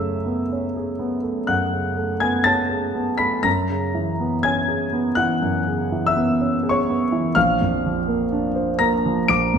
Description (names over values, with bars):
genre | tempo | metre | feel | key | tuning
classical, impressionist solo piano | 61 BPM | 4/4 | rubato | unclear | A4 = 440 Hz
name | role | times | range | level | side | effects
warm concert grand piano | solo | 0.0-9.6 s | A#1 to D7 | -18 LUFS | equal | none
room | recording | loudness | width
moderate scoring stage reverb, RT60 1.5 s | minimal, uncompressed stereo recording | -19 LUFS | side -7 dB against mid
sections
0.0-9.6 A section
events
none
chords
0.0 F#m11; 3.5 C#m7/F#; 7.4 A#add9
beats
0.50 1.49 2.47 | 3.46 4.45 5.43 6.39 | 7.35 8.31 9.28